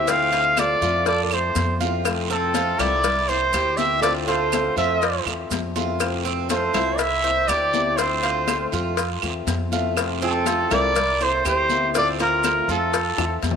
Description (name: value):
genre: latin, Cuban son and guajira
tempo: 121 BPM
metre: 4/4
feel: straight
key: F major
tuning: A4 = 440 Hz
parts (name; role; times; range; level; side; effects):
- warm trumpet; melody; 0.0-13.4 s; A4 to F5; -21 LUFS; equal; none
- flamenco guitar; second line; 0.0-13.4 s; F4 to D5; -30 LUFS; right 5 dB; none
- fingerpicked old ladder-braced acoustic guitar; accompaniment; 0.0-13.6 s; C3 to F4; -29 LUFS; left 9 dB; none
- Cuban tres; arpeggios; 0.0-13.2 s; C4 to C5; -29 LUFS; right 10 dB; tape echo
- upright bass; bass; 0.0-13.6 s; C2 to F2; -29 LUFS; equal; none
- congas; percussion; 0.1-13.6 s; none; -32 LUFS; left 9 dB; none
- cowbell and bongos; percussion; 0.1-13.6 s; none; -29 LUFS; left 11 dB; none
- guiro; percussion; 0.1-13.6 s; none; -34 LUFS; right 12 dB; none
- maracas; percussion; 0.1-13.6 s; none; -35 LUFS; right 11 dB; none
- claves; percussion; 0.6-13.4 s; none; -32 LUFS; right 12 dB; none
room: moderate echo chamber reverb, RT60 2.1 s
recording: 1960s-style stereo with parts hard left and right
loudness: -19 LUFS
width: side -7 dB against mid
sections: 0.0-13.6 A section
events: drum fill 13.2-13.6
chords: 0.1 Dm7; 1.1 Fmaj7; 3.0 C7; 4.0 Dm7; 5.0 Fmaj7; 7.0 C7; 8.0 Dm7; 9.0 Fmaj7; 11.0 C7; 11.9 Dm7; 12.9 Fmaj7